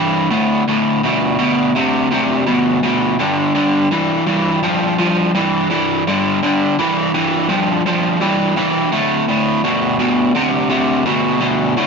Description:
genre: rock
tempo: 84 BPM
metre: 4/4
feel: straight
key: unclear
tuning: A4 = 438 Hz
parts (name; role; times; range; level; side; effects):
- overdriven electric guitar; solo; 0.0-11.9 s; D2 to F3; -14 LUFS; equal; none
room: moderate studio reverb, RT60 0.6 s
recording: rough rehearsal-room recording, nothing above 7.5 kHz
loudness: -14 LUFS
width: side -5 dB against mid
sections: 0.0-11.9 A section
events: none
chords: 0.3 D5; 3.2 G5; 8.9 D5

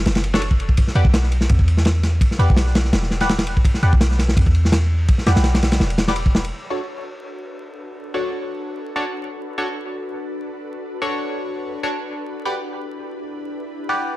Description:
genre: drum and bass, jungle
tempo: 167 BPM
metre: 4/4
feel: swing 55% on 16ths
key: B minor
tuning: A4 = 440 Hz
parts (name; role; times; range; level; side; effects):
- warm 808-style bass; bass; 0.0-6.5 s; E1 to E2; -18 LUFS; equal; none
- crunchy breakbeat drum kit; drums; 0.1-6.5 s; kick drum, ride cymbal, snare drum; -18 LUFS; equal; none
- band-passed chord stab; stabs; 0.3-14.2 s; D4 to F#5; -26 LUFS; equal; phaser, dub echo
- ethereal airy pad; sustained chords; 7.0-14.2 s; D4 to B4; -30 LUFS; left 1 dB; ensemble chorus, built-in reverb, vintage 12-bit sampler grit
room: light reverb, small room ambience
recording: dark, warm production, vinyl crackle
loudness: -17 LUFS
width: side -17 dB against mid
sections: 0.0-6.5 A section; 6.5-14.2 B section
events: filter sweep on synth stab 0.0-6.5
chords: 0.0 Bm7 (rootless); 0.8 Em7; 6.5 Bm7; 12.3 Em7

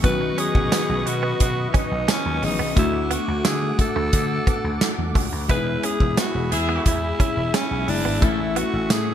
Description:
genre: 1980s-style pop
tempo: 88 BPM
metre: 4/4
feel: straight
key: unclear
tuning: A4 = 439 Hz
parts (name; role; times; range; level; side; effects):
- tine electric piano; accompaniment; 0.0-9.1 s; D#3 to G#4; -28 LUFS; left 5 dB; none
- brassy analog pad; sustained chords; 0.0-9.1 s; A3 to D6; -30 LUFS; left 1 dB; chorus
- direct-recorded clean electric guitar; riff; 0.0-9.0 s; A3 to E4; -32 LUFS; right 7 dB; analog chorus, ping-pong delay
- vintage slap bass; bass; 0.0-9.1 s; E1 to D3; -27 LUFS; equal; none
- modern studio drum kit; drums; 0.0-9.1 s; hi-hat, kick drum, snare drum, tambourine; -22 LUFS; equal; gated reverb
- breathy alto saxophone; melody; 0.1-9.1 s; C#4 to B4; -26 LUFS; right 1 dB; ping-pong delay
- warm horn section; stabs; 5.5-8.4 s; E3 to A4; -33 LUFS; left 1 dB; none
room: moderate plate reverb, RT60 2.4 s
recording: bright 1980s-style digital production, faint mains hum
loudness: -19 LUFS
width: side -10 dB against mid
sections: 0.0-9.1 A section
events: none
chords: 0.0 Badd9; 2.8 D; 5.5 E; 8.2 A

